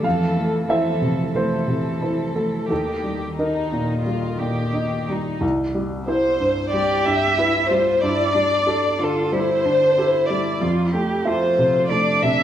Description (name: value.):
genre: neoclassical piano and strings.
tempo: 91 BPM.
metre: 4/4.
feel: uneven beats, rubato.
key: C major.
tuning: A4 = 440 Hz.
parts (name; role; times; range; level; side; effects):
muted chamber violin section; melody; 0.0-12.4 s; Eb4 to E5; -21 LUFS; left 1 dB; none.
muted cello; second line; 0.0-12.4 s; Eb3 to G4; -26 LUFS; right 2 dB; none.
dark baby grand piano; accompaniment; 0.0-12.4 s; C2 to F5; -22 LUFS; equal; none.
room: wet recital hall reverb, RT60 1.4 s.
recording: recorded in a church or concert hall.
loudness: -18 LUFS.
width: side -10 dB against mid.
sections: 0.0-5.4 A section; 5.4-12.4 A section.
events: none.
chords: 0.0 Fmaj7; 2.7 Eb; 5.4 Cmaj7; 8.0 Gsus2; 10.6 Fmaj7.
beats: | 0.05 0.70 1.35 2.02 | 2.70 3.38 4.07 4.75 | 5.42 6.08 6.74 7.38 | 8.03 8.67 9.33 9.98 | 10.62 11.27 11.91.